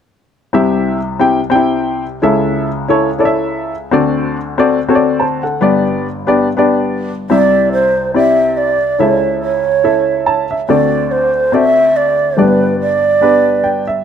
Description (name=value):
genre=gospel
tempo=142 BPM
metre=4/4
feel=swing 57% on 8ths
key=C major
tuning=A4 = 440 Hz
part: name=warm upright piano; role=accompaniment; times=0.5-14.0 s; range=G1 to A5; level=-13 LUFS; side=left 2 dB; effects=none
part: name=breathy mellow long shakuhachi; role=melody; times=7.3-13.8 s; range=B4 to E5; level=-12 LUFS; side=right 3 dB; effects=slapback echo
room=light reverb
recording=none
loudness=-11 LUFS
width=side -8 dB against mid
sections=0.5-7.3 A section; 7.3-14.0 B section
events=upright piano fill 10.1-10.7, 13.4-14.0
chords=0.5 C; 2.2 A/C#; 3.9 D7; 5.6 G; 7.3 C; 9.0 A/C#; 10.7 D7; 12.4 G